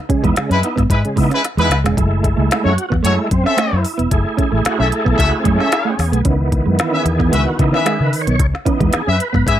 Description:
funk; 112 BPM; 4/4; straight; F# dorian; A4 = 440 Hz
mellow electric guitar; riff; 0.1-9.5 s; F#3 to C#4; -22 LUFS; right 7 dB; vibrato effect
overdriven tonewheel organ; stabs; 0.1-9.6 s; C#3 to C#5; -20 LUFS; right 2 dB; chorus vibrato, fast rotary speaker
organic electronic drum kit; drums; 0.1-9.6 s; hi-hat, kick drum, snare drum; -19 LUFS; left 1 dB; overdrive
vintage muted fingered electric bass; bass; 0.2-9.6 s; E1 to C#3; -17 LUFS; left 1 dB
clear horn section; second line; 0.5-9.6 s; G#3 to E5; -20 LUFS; left 3 dB; plate reverb
light reverb; -14 LUFS; side -11 dB against mid
0.0-2.0 A section; 2.0-9.6 B section
drum fill 1.4-2.0; tonewheel organ solo 2.0-9.6
0.0 C#m7; 2.0 F#m7; 6.3 C#m7

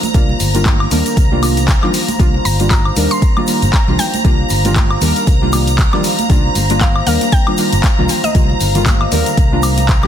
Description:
deep house; 117 BPM; 4/4; swing 57% on 16ths; C minor; A4 = 440 Hz
punchy analog drum machine; drums; 0.0-10.1 s; handclaps, hi-hat, woodblock; -20 LUFS; left 2 dB; overdrive
congas; percussion; 0.0-10.1 s; -26 LUFS; right 5 dB
egg shaker; percussion; 0.0-10.0 s; -27 LUFS; right 4 dB
string machine, violins; texture; 0.0-10.1 s; Bb5; -24 LUFS; equal; ensemble chorus, sidechain pumping
warbly tape-like pad; texture; 0.0-10.1 s; C5 to Bb5; -24 LUFS; right 1 dB; chorus, built-in reverb, sidechain pumping
deep mellow chord stab; stabs; 0.1-10.1 s; D3 to Bb4; -18 LUFS; equal; chorus, sidechain pumping, digital delay
fingered electric bass; bass; 0.1-10.1 s; G1 to Eb2; -17 LUFS; equal; sidechain pumping
electronic kick drum; drums; 0.1-10.0 s; -13 LUFS; equal
mallet-like synth pluck; melody; 2.5-9.7 s; Eb5 to C6; -23 LUFS; left 1 dB; chorus, ping-pong delay
light reverb, digital ambience; dense, heavily limited modern master; -11 LUFS; side -9 dB against mid
0.0-10.1 A section
0.0 Cm11

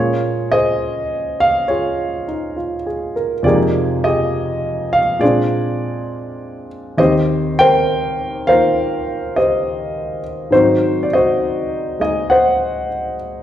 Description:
solo jazz; 68 BPM; 4/4; swing 69% on 8ths; Bb minor; A4 = 440 Hz
dark concert grand piano; solo; 0.0-13.4 s; Eb2 to G5; -15 LUFS; equal
wet large studio reverb, RT60 1.5 s; band playing live in one room; -15 LUFS; side -11 dB against mid
0.0-13.4 A section
0.0 Bbm9; 3.4 Fm11; 5.2 Bb9; 7.0 Eb6; 10.5 Ab7

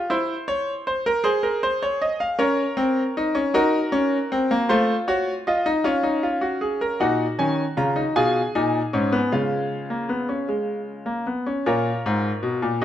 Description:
classical, baroque-style 4-part fugue for grand piano; 52 BPM (dotted quarters); 6/8; straight; Bb minor, F# major from 7.0 s; A4 = 440 Hz
bright concert grand piano; solo; 0.0-12.8 s; G#2 to A#5; -20 LUFS; equal
moderate recital hall reverb, RT60 1.8 s; close, detailed microphones; -20 LUFS; side -11 dB against mid
0.0-7.0 A section; 7.0-11.6 B section; 11.6-12.8 C section
0.1 C7/E; 1.3 Fm/Ab; 2.4 Bbm; 3.5 Cm7b5; 4.7 F7/A; 5.9 Bbm/Db; 7.0 F#/A#; 8.2 G#m; 9.3 C#; 11.6 A#m7

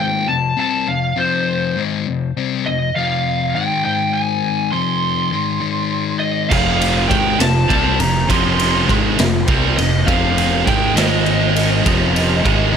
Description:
quiet-loud alternative rock; 67 BPM (dotted quarters); 6/8; straight; A4 = 440 Hz
lead guitar through a small cranked amp; melody; 0.0-12.8 s; C5 to C6; -20 LUFS; right 2 dB; overdrive
sludgy distorted guitar; riff; 0.0-12.8 s; F2 to C4; -20 LUFS; left 8 dB; overdrive
high-gain distorted guitar; riff; 6.5-12.8 s; F2 to C4; -20 LUFS; right 14 dB; distortion
overdriven electric guitar; riff; 6.5-12.8 s; F2 to C4; -24 LUFS; right 2 dB
fuzz picked electric bass; bass; 6.5-12.8 s; F1 to C2; -20 LUFS; right 1 dB; overdrive
raw garage drum kit; drums; 6.5-12.6 s; crash cymbal, kick drum, ride cymbal, snare drum; -19 LUFS; equal
studio reverb; -14 LUFS; side -7 dB against mid
0.0-12.8 A section
0.0 F5; 3.8 Ab5; 4.7 F5; 5.6 Ab5; 6.5 F5; 11.0 Ab5; 11.9 F5

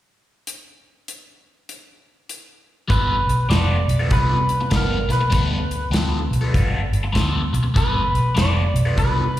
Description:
electric blues shuffle; 99 BPM; 4/4; swing 64% on 8ths; G mixolydian; A4 = 440 Hz
natural country drum kit; drums; 0.5-9.4 s; hi-hat, kick drum, snare drum; -23 LUFS; equal
electric guitar through a small old amp; melody; 2.9-9.4 s; Bb4 to D5; -24 LUFS; equal; slapback echo
cranked stack guitar; riff; 2.9-9.2 s; G3 to A4; -25 LUFS; left 2 dB; overdrive, phaser, slapback echo
vintage muted fingered electric bass; bass; 2.9-9.4 s; F1 to D2; -20 LUFS; equal
little or no reverb; live gig heard through the venue's PA, recital hall reverb; -17 LUFS; side -14 dB against mid
0.5-2.9 A section; 2.9-9.4 B section
0.5 N.C.; 2.9 G9

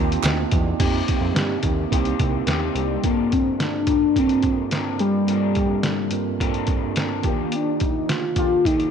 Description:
indie pop, bedroom pop; 107 BPM; 4/4; straight; G minor; A4 = 445 Hz
warm velvety synth lead; melody; 0.0-8.9 s; G3 to Eb5; -21 LUFS; left 2 dB; analog chorus
electric guitar through a small old amp; accompaniment; 0.0-8.9 s; F2 to Bb4; -30 LUFS; left 12 dB; analog chorus, warbly pitch drift
mellow tine electric piano; accompaniment; 0.0-8.9 s; G2 to C6; -26 LUFS; right 12 dB; medium stereo tremolo
fat analog bass; bass; 0.0-3.0 s; C2 to G2; -25 LUFS; equal
trip hop sampler-style drum kit; drums; 0.1-8.9 s; crash cymbal, hi-hat, kick drum, snare drum; -24 LUFS; equal
light reverb; 1960s-style stereo with parts hard left and right; -19 LUFS; side -7 dB against mid
0.8-3.0 A section; 3.0-8.9 B section
tine electric piano fill 0.0-0.8
0.0 F9sus4; 3.0 Gm11; 7.2 Ebmaj9

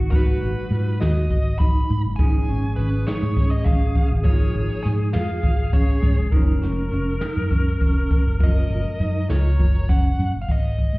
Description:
progressive instrumental, band music in an uneven meter; 203 BPM (eighths); 7/8; straight; A4 = 440 Hz
breathy alto saxophone; second line; 0.0-10.2 s; F#4 to A#4; -32 LUFS; left 2 dB; plate reverb
vintage hollow-body jazz guitar; accompaniment; 0.0-10.5 s; E#3 to D#4; -33 LUFS; equal; double-tracked left and right
hollow-body short-scale fingered electric bass; bass; 0.0-11.0 s; E#1 to G#2; -22 LUFS; equal
dark smooth lead guitar; melody; 0.1-11.0 s; B4 to B5; -31 LUFS; equal; overdrive, plate reverb
vibraphone with medium mallets; arpeggios; 0.1-10.3 s; C#4 to F#4; -30 LUFS; right 2 dB; slapback echo
jazz brush drum kit; drums; 0.1-10.9 s; crash cymbal, hi-hat, kick drum, snare drum; -20 LUFS; equal
little or no reverb; heard muffled through a wall, stone room reverb, EQ; -18 LUFS; side -22 dB against mid
0.0-10.5 A section
0.0 G#m7; 2.2 A#m7/G#; 6.3 F#maj7

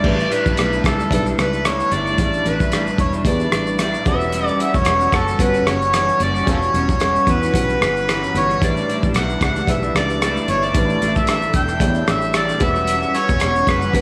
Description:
indie pop, bedroom pop; 112 BPM; 4/4; swing 55% on 16ths; A4 = 438 Hz
overdriven harmonica; melody; 0.0-14.0 s; F4 to G5; -22 LUFS; equal; subtle chorus, tape echo
electric guitar through a small old amp; accompaniment; 0.0-14.0 s; A2 to F#4; -30 LUFS; equal; subtle chorus, vibrato effect, tape echo
warm upright piano; accompaniment; 0.0-14.0 s; C#4 to D5; -28 LUFS; equal; cassette tape, tape echo
hollow soft pad; sustained chords; 0.0-14.0 s; E3 to F#5; -29 LUFS; equal; ensemble chorus
fingered electric bass; bass; 0.0-14.0 s; E1 to E2; -26 LUFS; equal
cloth-damped thuddy drum kit; drums; 0.0-14.0 s; crash cymbal, hi-hat, kick drum, rim click, shaker; -24 LUFS; equal
moderate echo chamber reverb, RT60 1.9 s, studio reverb; echo-heavy mix; -18 LUFS; mono
0.0-14.0 A section
0.0 A7sus4; 4.1 Em69; 8.6 A7sus4; 12.6 Em69

